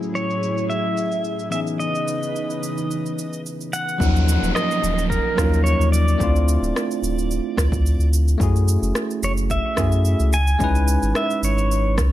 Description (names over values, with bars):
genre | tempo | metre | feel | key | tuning
sunset chillout | 109 BPM | 4/4 | straight | Eb phrygian | A4 = 439 Hz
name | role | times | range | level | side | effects
bell-like tine electric piano | accompaniment | 0.0-12.1 s | Fb3 to Cb5 | -25 LUFS | moving between left 5 dB and right 6 dB | auto-pan, digital delay
airy breathy pad | sustained chords | 0.0-4.0 s | A2 to Cb5 | -28 LUFS | equal | chorus
electronic shaker and rim click | drums | 0.0-12.1 s | none | -29 LUFS | right 1 dB | none
pedal steel guitar | melody | 0.2-12.0 s | Bb4 to Ab5 | -25 LUFS | equal | digital delay
warm sub bass | bass | 4.0-12.1 s | D1 to Gb2 | -19 LUFS | equal | none
electronic kick drum | drums | 4.0-12.1 s | none | -24 LUFS | equal | none
downlifter | sound effects | 4.0-8.4 s | none | -31 LUFS | right 1 dB | none
room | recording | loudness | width
digital ambience | low-pass filter, lossy compression artefacts | -18 LUFS | side -14 dB against mid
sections
0.0-4.0 A section; 4.0-12.1 B section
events
none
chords
0.0 Gbm9; 1.5 Dbm9; 4.0 Ebm9; 6.2 Dm9; 8.4 Gbm9; 10.3 Dbm9